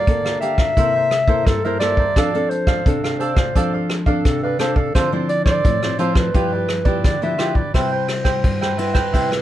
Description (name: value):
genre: samba and choro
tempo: 86 BPM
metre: 4/4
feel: straight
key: C major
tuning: A4 = 439 Hz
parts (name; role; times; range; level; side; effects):
- warm clarinet; melody; 0.0-9.4 s; A4 to E5; -21 LUFS; equal; none
- cavaquinho; accompaniment; 0.0-9.4 s; D4 to G5; -25 LUFS; right 4 dB; none
- nylon-string guitar; accompaniment; 0.0-9.4 s; G2 to A4; -23 LUFS; left 2 dB; none
- vintage brush drum kit; drums; 0.1-9.4 s; hi-hat, kick drum, ride cymbal, rim click; -19 LUFS; equal; none
room: light reverb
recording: dark, warm production, faint mains hum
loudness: -16 LUFS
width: side -13 dB against mid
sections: 0.0-7.7 A section; 7.7-9.4 B section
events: none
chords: 0.0 Gm9; 0.8 C6; 2.2 F6; 5.0 Dm9; 6.3 G6; 7.7 Cmaj7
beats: 0.07 0.77 1.47 | 2.16 2.86 3.56 4.25 | 4.95 5.65 6.35 7.04 | 7.74 8.44 9.14